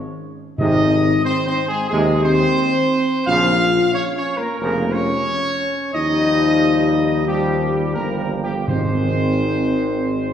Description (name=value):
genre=classical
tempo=89 BPM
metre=4/4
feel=uneven beats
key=unclear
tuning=A4 = 440 Hz
part: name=dark trumpet section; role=melody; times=0.0-10.3 s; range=G4 to F5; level=-22 LUFS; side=right 1 dB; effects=none
part: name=mellow French horn section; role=sustained chords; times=0.0-10.3 s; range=G3 to F4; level=-21 LUFS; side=left 2 dB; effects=none
part: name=clear trombone section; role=sustained chords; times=0.6-10.3 s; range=C3 to Ab3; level=-26 LUFS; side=right 2 dB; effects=none
part: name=mellow tuba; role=bass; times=0.6-10.3 s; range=F1 to Eb2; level=-22 LUFS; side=equal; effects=none
part: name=timpani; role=percussion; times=0.6-1.5, 8.7-9.7 s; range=Ab2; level=-24 LUFS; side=right 1 dB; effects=none
room=wet scoring stage reverb, RT60 1.9 s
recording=heard from further back in the room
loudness=-16 LUFS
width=side -9 dB against mid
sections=0.0-10.3 A section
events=none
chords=0.0 N.C.; 0.6 Ab; 3.3 Bbm; 5.9 Ebadd9; 8.7 Ab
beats=| 0.59 1.25 1.91 2.58 | 3.27 3.94 4.60 5.27 | 5.94 6.61 7.27 7.95 | 8.69 9.41 10.12